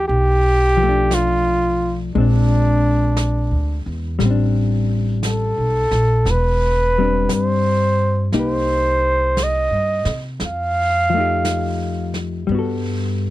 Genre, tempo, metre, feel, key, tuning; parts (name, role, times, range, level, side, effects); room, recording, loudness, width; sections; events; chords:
jazz ballad; 58 BPM; 4/4; swing 68% on 8ths; A4 = 440 Hz
breathy trumpet; melody; 0.0-12.1 s; D4 to F5; -19 LUFS; right 1 dB
hollow-body jazz guitar; accompaniment; 0.0-13.3 s; F3 to A4; -23 LUFS; left 6 dB
upright bass; bass; 0.0-13.3 s; E1 to C3; -20 LUFS; equal
jazz brush drum kit; drums; 0.1-13.3 s; brushed snare drum, hi-hat, snare drum; -31 LUFS; right 1 dB
little or no reverb; dry, close 1970s-style studio recording; -16 LUFS; side -16 dB against mid
0.0-13.3 A section
0.1 Bm7b5; 2.1 Bb9; 4.2 Am11; 8.3 Cm7; 10.4 F9; 12.5 Gmaj9